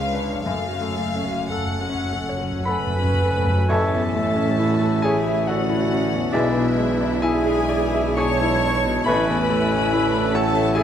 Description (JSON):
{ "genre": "classical, romantic movement for piano and orchestra", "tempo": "50-72 BPM", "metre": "3/4", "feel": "rubato", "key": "F# minor, A major from 3.7 s", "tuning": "A4 = 439 Hz", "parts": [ { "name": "clear grand piano", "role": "melody", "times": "0.0-10.8 s", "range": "A1 to C#6", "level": "-24 LUFS", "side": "left 3 dB", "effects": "none" }, { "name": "warm chamber violin section", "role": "melody", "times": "0.0-10.8 s", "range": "C#4 to F#5", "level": "-32 LUFS", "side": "left 3 dB", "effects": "none" }, { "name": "warm chamber violin section", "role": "second line", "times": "0.0-10.8 s", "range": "E5 to C#6", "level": "-31 LUFS", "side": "left 5 dB", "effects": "none" }, { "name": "warm chamber viola section", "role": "accompaniment", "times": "0.0-10.8 s", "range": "A3 to C#5", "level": "-29 LUFS", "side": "right 4 dB", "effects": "none" }, { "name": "warm chamber cello section", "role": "bass", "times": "0.0-10.8 s", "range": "C#2 to B2", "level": "-29 LUFS", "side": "right 4 dB", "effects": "none" }, { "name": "warm symphonic double bass section", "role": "bass", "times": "0.0-10.8 s", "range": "F#1 to C#2", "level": "-31 LUFS", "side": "right 4 dB", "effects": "none" }, { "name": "timpani", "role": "percussion", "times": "0.5-3.6 s", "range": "F#2", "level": "-26 LUFS", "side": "equal", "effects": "none" }, { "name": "dark clarinet", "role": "second line", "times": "2.7-10.8 s", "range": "E4 to C#5", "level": "-29 LUFS", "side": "left 1 dB", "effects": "none" }, { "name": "mellow hollow silver concert flute", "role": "second line", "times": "2.7-10.8 s", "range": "B4 to A5", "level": "-29 LUFS", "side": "equal", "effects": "none" }, { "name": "clear oboe", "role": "second line", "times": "3.7-9.4 s", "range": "C#5 to D5", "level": "-32 LUFS", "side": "right 2 dB", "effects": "none" }, { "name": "clear bassoon", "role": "accompaniment", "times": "3.7-9.4 s", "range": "E3 to A3", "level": "-29 LUFS", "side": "right 2 dB", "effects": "none" }, { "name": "mellow French horn section", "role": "sustained chords", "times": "3.7-10.8 s", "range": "C#4 to E4", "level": "-28 LUFS", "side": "left 6 dB", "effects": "none" }, { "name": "warm trombone section", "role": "sustained chords", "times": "3.7-10.8 s", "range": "E3 to A3", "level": "-30 LUFS", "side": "right 7 dB", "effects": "none" }, { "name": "mellow tuba", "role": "bass", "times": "3.7-10.8 s", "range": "A1 to B1", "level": "-30 LUFS", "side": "right 5 dB", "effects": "none" } ], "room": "moderate scoring stage reverb, RT60 1.7 s", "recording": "none", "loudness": "-18 LUFS", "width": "side -9 dB against mid", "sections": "0.0-3.7 A section; 3.7-10.8 B section", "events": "timpani fill 0.5-3.7", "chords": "0.5 F#m; 3.7 A; 6.3 E7/B; 9.1 A" }